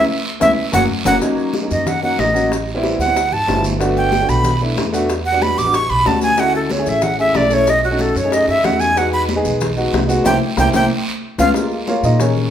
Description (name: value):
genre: Afro-Cuban jazz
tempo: 186 BPM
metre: 4/4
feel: straight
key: unclear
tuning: A4 = 440 Hz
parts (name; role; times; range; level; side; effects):
- breathy bright jazz flute; melody; 0.0-11.5 s; F#4 to D6; -16 LUFS; right 1 dB; none
- warm baby grand piano; accompaniment; 0.0-12.5 s; F#3 to E#5; -20 LUFS; equal; none
- upright bass; bass; 0.0-12.5 s; F#1 to A#2; -22 LUFS; equal; none
- bongos; percussion; 0.4-12.4 s; none; -25 LUFS; left 3 dB; none
- congas; percussion; 0.4-12.5 s; none; -25 LUFS; left 3 dB; none
- guiro; percussion; 0.4-12.5 s; none; -31 LUFS; right 4 dB; none
- maracas; percussion; 0.4-12.5 s; none; -35 LUFS; left 4 dB; none
room: moderate large studio reverb, RT60 1.2 s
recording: band playing live in one room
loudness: -14 LUFS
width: side -9 dB against mid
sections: 0.0-1.2 A section; 1.2-11.6 A section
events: band accent 0.0-1.2, 10.3-11.6; flute solo 0.0-11.6; drum fill 0.6-1.2, 10.6-11.6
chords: 0.0 C#m7; 0.6 F#; 1.2 F#6; 2.5 Am9; 3.2 D13; 3.8 Gmaj9; 5.1 Em9; 5.7 A13; 6.4 Dmaj9; 7.7 B9; 9.0 Emaj7; 10.3 C7; 10.9 C#7; 11.6 C#69